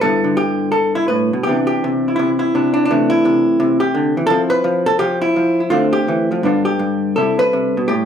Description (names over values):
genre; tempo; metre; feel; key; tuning
solo jazz; 168 BPM; 4/4; swing 64% on 8ths, rubato; C major; A4 = 444 Hz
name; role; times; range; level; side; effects
vintage hollow-body jazz guitar; solo; 0.0-8.1 s; G2 to B4; -14 LUFS; equal; none
room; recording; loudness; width
moderate large studio reverb, RT60 0.8 s; band playing live in one room; -14 LUFS; side -8 dB against mid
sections
0.0-1.5 A section; 1.5-8.1 B section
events
none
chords
0.0 G69; 1.5 Cmaj9; 2.9 C69; 4.3 F5; 5.7 Dm7; 6.4 G7; 7.2 Cmaj9